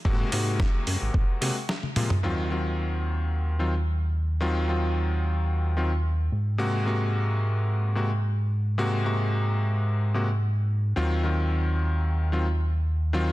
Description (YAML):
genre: nu-disco, nu disco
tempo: 110 BPM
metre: 4/4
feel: straight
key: Eb dorian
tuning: A4 = 443 Hz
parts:
  - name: bright electric grand piano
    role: accompaniment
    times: 0.0-13.3 s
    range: C3 to Gb4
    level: -29 LUFS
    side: left 1 dB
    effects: slapback echo
  - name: chorused synth bass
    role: bass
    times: 0.1-13.3 s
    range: Ab1 to C3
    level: -25 LUFS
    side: equal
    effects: tube saturation
  - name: electronic kick drum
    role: drums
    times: 0.1-1.3 s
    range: none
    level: -24 LUFS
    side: equal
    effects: studio reverb
  - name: dusty soul sampler-style drum kit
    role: drums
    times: 0.3-2.3 s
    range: crash cymbal, hi-hat, snare drum, toms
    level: -29 LUFS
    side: equal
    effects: low-pass filter on hats, studio reverb, low-pass filter on snare, low-pass filter on toms, low-pass filter on cymbals
room: light reverb, digital ambience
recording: dense, heavily limited modern master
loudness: -23 LUFS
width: side -17 dB against mid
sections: 0.0-2.2 A section; 2.2-13.3 B section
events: drum fill 1.8-2.2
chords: 0.0 Ab9; 2.2 Ebm69; 6.3 Ab9; 11.0 Ebm69